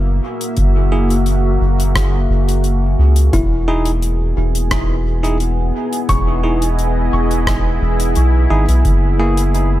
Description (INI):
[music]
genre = ambient dub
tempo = 87 BPM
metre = 4/4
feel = straight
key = unclear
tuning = A4 = 440 Hz
[part]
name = deep dark ambient pad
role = sustained chords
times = 0.0-9.8 s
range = A#3 to E5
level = -21 LUFS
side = equal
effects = chorus, built-in reverb
[part]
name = soft dub sub bass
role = bass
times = 0.0-9.8 s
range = E1 to C#2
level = -15 LUFS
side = equal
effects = none
[part]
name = gated 80s drum kit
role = drums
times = 0.4-9.7 s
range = hi-hat, rim click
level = -24 LUFS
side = left 2 dB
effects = none
[part]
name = electronic kick drum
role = drums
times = 0.6-9.0 s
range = none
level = -20 LUFS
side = equal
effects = none
[part]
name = bell-like tine electric piano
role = stabs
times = 0.9-9.4 s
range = A#3 to G#4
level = -24 LUFS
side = right 2 dB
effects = dub echo
[part]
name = kalimba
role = arpeggios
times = 3.3-9.5 s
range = E4 to C#6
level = -24 LUFS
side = left 2 dB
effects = dub echo
[sound]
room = studio ambience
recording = none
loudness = -13 LUFS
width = side -14 dB against mid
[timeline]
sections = 0.0-9.8 A section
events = none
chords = 0.0 F#9; 3.3 Emaj7; 8.8 F#9